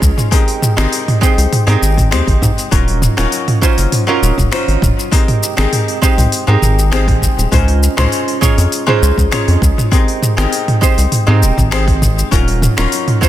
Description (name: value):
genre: sunset chillout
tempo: 100 BPM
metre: 4/4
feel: straight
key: Ab major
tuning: A4 = 440 Hz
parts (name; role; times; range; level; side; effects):
- archtop guitar, miked and amplified; accompaniment; 0.0-13.3 s; Gb3 to Db5; -16 LUFS; equal; auto-pan, tape echo
- round analog bass; bass; 0.0-12.9 s; Eb1 to Ab2; -13 LUFS; equal; none
- deep house drum kit; drums; 0.0-13.3 s; finger snaps, hi-hat, shaker, toms; -17 LUFS; equal; soft clipping on snare
- electronic kick drum; drums; 0.0-13.3 s; none; -14 LUFS; equal; none
room: light reverb, digital ambience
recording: dense, heavily limited modern master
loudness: -11 LUFS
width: side -13 dB against mid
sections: 0.0-13.3 A section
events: none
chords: 0.3 Abmaj9; 2.7 Ebm9; 5.1 Abmaj9; 7.5 Dbmaj7; 9.9 Abmaj9; 12.3 Ebm9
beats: | 0.32 0.92 1.52 2.12 | 2.72 3.32 3.92 4.52 | 5.12 5.72 6.32 6.92 | 7.52 8.12 8.72 9.32 | 9.92 10.52 11.12 11.72 | 12.32 12.92